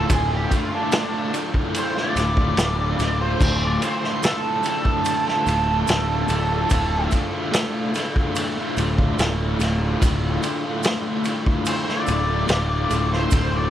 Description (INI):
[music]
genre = psychedelic rock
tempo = 73 BPM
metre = 4/4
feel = straight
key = D minor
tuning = A4 = 440 Hz
[part]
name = octave-fuzz lead guitar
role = melody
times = 0.0-13.7 s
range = D4 to D5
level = -25 LUFS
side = right 2 dB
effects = wah, distortion, slapback echo
[part]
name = tonewheel organ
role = sustained chords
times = 0.0-13.7 s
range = A3 to F4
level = -34 LUFS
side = right 3 dB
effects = none
[part]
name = overdriven electric guitar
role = riff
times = 0.0-13.7 s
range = D2 to F4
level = -25 LUFS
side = left 1 dB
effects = tremolo
[part]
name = fuzz picked electric bass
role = bass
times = 0.0-13.7 s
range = D1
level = -24 LUFS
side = equal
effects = overdrive
[part]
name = vintage drum kit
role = drums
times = 0.1-13.5 s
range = crash cymbal, kick drum, ride cymbal, snare drum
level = -24 LUFS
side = equal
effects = none
[part]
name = tube shaker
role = percussion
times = 0.1-13.5 s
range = none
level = -38 LUFS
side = right 13 dB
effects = none
[sound]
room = small room reverb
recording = none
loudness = -19 LUFS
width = side -11 dB against mid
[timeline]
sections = 0.0-13.7 A section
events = lead electric guitar solo 0.0-13.7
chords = 0.0 Dm